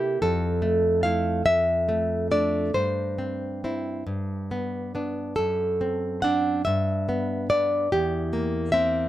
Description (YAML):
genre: romantic piece for solo classical guitar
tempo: 47 BPM (dotted quarters)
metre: 6/8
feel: uneven beats, rubato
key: C major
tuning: A4 = 440 Hz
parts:
  - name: nylon-string guitar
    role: solo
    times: 0.0-9.1 s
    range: E2 to F#5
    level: -22 LUFS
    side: equal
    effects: none
room: light reverb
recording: none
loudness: -23 LUFS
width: side -14 dB against mid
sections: 0.0-9.1 A section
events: none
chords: 0.2 Fmaj7; 1.5 Dm/F; 2.7 C/G; 4.1 G; 5.4 D7/F#; 6.6 G; 7.9 C7/E